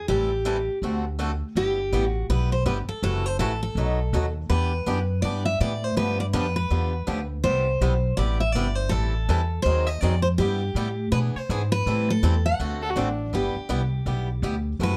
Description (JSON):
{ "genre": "acoustic string swing (jazz manouche)", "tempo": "163 BPM", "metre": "4/4", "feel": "swing 62% on 8ths", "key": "G major", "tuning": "A4 = 440 Hz", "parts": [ { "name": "picked steel-string acoustic guitar", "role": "melody", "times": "0.0-15.0 s", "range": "G4 to F#5", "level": "-30 LUFS", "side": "equal", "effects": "none" }, { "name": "picked swing-style acoustic guitar", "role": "accompaniment", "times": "0.1-15.0 s", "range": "B2 to A4", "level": "-32 LUFS", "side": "equal", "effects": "none" }, { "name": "upright bass", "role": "bass", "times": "0.1-15.0 s", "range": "F#1 to B2", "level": "-27 LUFS", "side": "equal", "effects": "none" }, { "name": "dark violin", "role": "second line", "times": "12.8-13.3 s", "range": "D4 to A4", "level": "-32 LUFS", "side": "equal", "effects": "none" } ], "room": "light reverb", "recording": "dark, warm production", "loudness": "-25 LUFS", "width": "mono", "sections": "0.0-1.6 A section; 1.6-13.3 B section; 13.3-15.0 B section", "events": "none", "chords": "0.1 Am7; 0.8 D7; 1.6 G6; 3.0 F#m7b5; 3.8 B7; 4.5 Em7; 6.0 G7; 7.4 Cmaj7; 8.9 Am7; 9.7 Ab7; 10.4 G6; 11.1 E7; 11.9 Am7; 12.6 D7; 13.3 G6" }